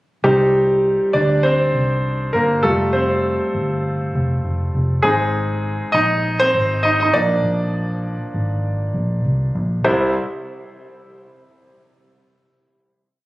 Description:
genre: piano-driven pop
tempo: 100 BPM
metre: 4/4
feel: swing 56% on 16ths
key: C minor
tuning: A4 = 440 Hz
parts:
  - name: clear concert grand piano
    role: accompaniment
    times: 0.2-10.1 s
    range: C2 to Eb5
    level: -18 LUFS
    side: equal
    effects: none
  - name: vintage muted fingered electric bass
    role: bass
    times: 0.2-10.1 s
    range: F1 to D2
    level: -21 LUFS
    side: equal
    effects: none
room: light reverb, studio reverb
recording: recorded on a phone in the room, compression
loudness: -16 LUFS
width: side -18 dB against mid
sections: 0.2-9.8 verse; 9.8-12.2 final chord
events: grand piano solo 0.2-9.8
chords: 0.2 Cm; 2.6 Fadd9; 5.0 Ab; 7.1 Bb; 9.8 N.C.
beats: | 0.24 0.84 1.44 2.04 | 2.64 3.24 3.84 4.44 | 5.04 5.64 6.24 6.84 | 7.44 8.04 8.64 9.24 | 9.84

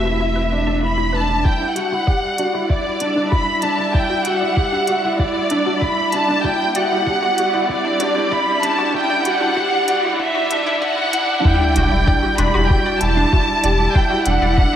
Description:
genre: piano and strings electronica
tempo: 96 BPM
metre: 4/4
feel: straight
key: E minor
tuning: A4 = 443 Hz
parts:
  - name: dark studio violin section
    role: melody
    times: 0.0-14.8 s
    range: D5 to B5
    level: -19 LUFS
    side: equal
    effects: diffuse ambient delay
  - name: muted string quartet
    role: sustained chords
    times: 0.0-14.8 s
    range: G3 to E5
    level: -26 LUFS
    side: equal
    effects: sidechain pumping
  - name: warm sub bass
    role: bass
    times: 0.0-1.4, 11.8-14.7 s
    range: E1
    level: -20 LUFS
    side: equal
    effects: sidechain pumping
  - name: felt-muted upright piano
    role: riff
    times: 0.1-14.7 s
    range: D4 to G4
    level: -23 LUFS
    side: right 1 dB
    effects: ensemble chorus, diffuse ambient delay
  - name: analog pluck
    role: arpeggios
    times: 0.2-14.8 s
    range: D4 to A5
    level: -28 LUFS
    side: left 1 dB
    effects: chorus, sidechain pumping, diffuse ambient delay
  - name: riser and sub drop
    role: sound effects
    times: 4.6-13.9 s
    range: none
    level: -26 LUFS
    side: equal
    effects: none
  - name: electronic kick drum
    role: drums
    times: 1.5-14.7 s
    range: none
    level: -18 LUFS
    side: equal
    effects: none
  - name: electronic hi-hat and woodblock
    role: drums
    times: 1.8-14.4 s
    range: none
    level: -27 LUFS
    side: equal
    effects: none
room: wet lush hall reverb, RT60 1.6 s, digital ambience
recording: dreamy mix soaked in reverb, high-pass filter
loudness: -15 LUFS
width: side -10 dB against mid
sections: 0.0-1.4 A section; 1.4-11.4 B section; 11.4-14.8 C section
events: build-up 1.4-11.4; filter sweep on synth arpeggio sound 1.4-11.4; filter sweep 1.4-11.4; riser 4.6-11.4; drop 11.4-14.8; impact 11.4-13.9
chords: 0.0 Amadd9/E; 1.4 Em9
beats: 0.20 0.82 | 1.45 2.07 2.70 3.32 | 3.95 4.57 5.20 5.82 | 6.45 7.07 7.70 8.32 | 8.95 9.57 10.20 10.82 | 11.45 12.07 12.70 13.32 | 13.95 14.57

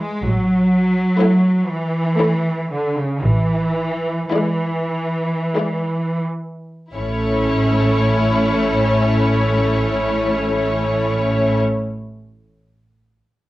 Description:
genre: classical, slow romantic movement for string orchestra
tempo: 41-63 BPM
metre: 3/4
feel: rubato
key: A major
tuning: A4 = 440 Hz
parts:
  - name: rich symphonic cello section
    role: bass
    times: 0.0-11.6 s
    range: C#3 to A3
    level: -19 LUFS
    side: right 1 dB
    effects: none
  - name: warm symphonic double bass section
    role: bass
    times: 0.2-11.6 s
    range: A1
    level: -20 LUFS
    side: right 1 dB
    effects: none
  - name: rich symphonic violin section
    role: melody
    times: 1.2-11.6 s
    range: C#5 to D5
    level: -27 LUFS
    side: left 4 dB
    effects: none
  - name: rich symphonic violin section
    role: second line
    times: 1.2-11.6 s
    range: E4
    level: -25 LUFS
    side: left 4 dB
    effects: none
  - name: rich studio viola section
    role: accompaniment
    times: 1.2-11.6 s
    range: G#3 to C#4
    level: -21 LUFS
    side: equal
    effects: none
room: light reverb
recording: worn, warbling old tape, cassette tape, warbly pitch drift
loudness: -16 LUFS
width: side -17 dB against mid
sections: 0.0-6.9 A section; 6.9-10.8 B section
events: slowing down 0.0-6.9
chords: 0.2 A; 3.2 E7/A; 6.9 A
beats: | 0.22 1.20 2.19 | 3.22 4.32 5.56 | 6.95 8.27 9.55

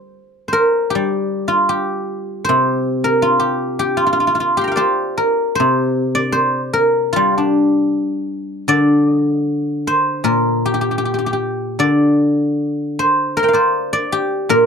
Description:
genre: chinese traditional, Chinese solo plucked strings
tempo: 78 BPM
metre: 2/4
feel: rubato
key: C shang mode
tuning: A4 = 438 Hz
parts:
  - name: guzheng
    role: solo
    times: 0.0-14.7 s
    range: Bb2 to C6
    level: -14 LUFS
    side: equal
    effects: none
room: light reverb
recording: dry, close 1970s-style studio recording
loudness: -14 LUFS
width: side -6 dB against mid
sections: 0.0-5.6 A section; 5.6-14.7 B section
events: none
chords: none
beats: 0.19 | 0.97 1.75 | 2.52 3.27 | 4.04 4.82 | 5.62 6.41 | 7.18 7.95 | 8.71 9.48 | 10.25 11.03 | 11.82 12.60 | 13.38 14.14

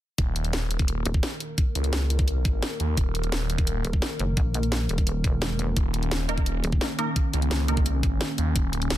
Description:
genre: dark technical drum and bass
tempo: 172 BPM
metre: 4/4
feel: straight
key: unclear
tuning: A4 = 436 Hz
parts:
  - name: dark analog pad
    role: sustained chords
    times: 0.2-9.0 s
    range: Eb3 to Bb4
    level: -33 LUFS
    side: equal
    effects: chorus, sidechain pumping
  - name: phased detuned saw bass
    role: bass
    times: 0.2-9.0 s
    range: Eb1 to Eb2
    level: -26 LUFS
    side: equal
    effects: phaser, overdrive, sidechain pumping
  - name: drum and bass drum kit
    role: drums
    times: 0.2-9.0 s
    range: hi-hat, snare drum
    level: -30 LUFS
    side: equal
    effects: none
  - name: electronic kick drum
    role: drums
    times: 0.2-8.6 s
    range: none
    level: -24 LUFS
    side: equal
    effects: none
  - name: pulsing pluck wobble bass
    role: bass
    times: 1.1-1.2, 3.8-6.8 s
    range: Eb1 to Bb1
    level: -26 LUFS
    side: equal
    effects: chorus
  - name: filtered dub chord stab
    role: stabs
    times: 6.3-9.0 s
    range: Bb3 to Bb4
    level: -32 LUFS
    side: right 2 dB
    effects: phaser, ping-pong delay
room: little or no reverb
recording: dense, heavily limited modern master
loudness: -23 LUFS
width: side -14 dB against mid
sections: 0.2-9.0 A section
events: none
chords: 0.2 Eb5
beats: | 0.18 0.53 0.88 1.23 | 1.58 1.93 2.28 2.63 | 2.98 3.32 3.67 4.02 | 4.37 4.72 5.07 5.42 | 5.76 6.11 6.46 6.81 | 7.16 7.51 7.86 8.21 | 8.56 8.90

